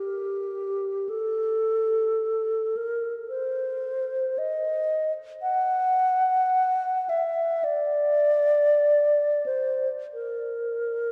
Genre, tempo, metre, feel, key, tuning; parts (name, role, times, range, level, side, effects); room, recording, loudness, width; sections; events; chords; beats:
classical, free, expressive piece for unaccompanied alto flute; free time; A4 = 440 Hz
wooden-headed alto flute; solo; 0.0-11.1 s; G4 to F#5; -25 LUFS; equal
wet cathedral reverb, RT60 4.4 s; dark, warm production; -25 LUFS; mono
0.0-11.1 A section
free time